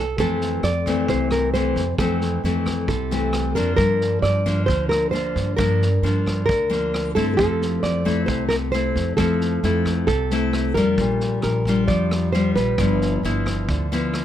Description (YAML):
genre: bossa nova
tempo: 133 BPM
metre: 4/4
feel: straight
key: F major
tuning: A4 = 436 Hz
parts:
  - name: nylon-string guitar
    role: melody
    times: 0.0-14.2 s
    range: A4 to D5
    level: -24 LUFS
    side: right 1 dB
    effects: none
  - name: nylon-string guitar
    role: accompaniment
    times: 0.0-14.2 s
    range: F2 to F4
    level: -23 LUFS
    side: left 3 dB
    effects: none
  - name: upright bass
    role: bass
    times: 0.0-14.2 s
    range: G1 to G2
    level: -24 LUFS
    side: right 1 dB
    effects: none
  - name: vintage drum kit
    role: drums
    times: 0.2-14.2 s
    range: kick drum, rim click, snare drum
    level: -30 LUFS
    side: right 1 dB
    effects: none
room: little or no reverb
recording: close, detailed microphones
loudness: -18 LUFS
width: side -11 dB against mid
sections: 0.2-14.2 A section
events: none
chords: 0.2 Fmaj7; 3.8 Gm7; 7.4 Fmaj7; 11.0 Bb6; 12.8 G13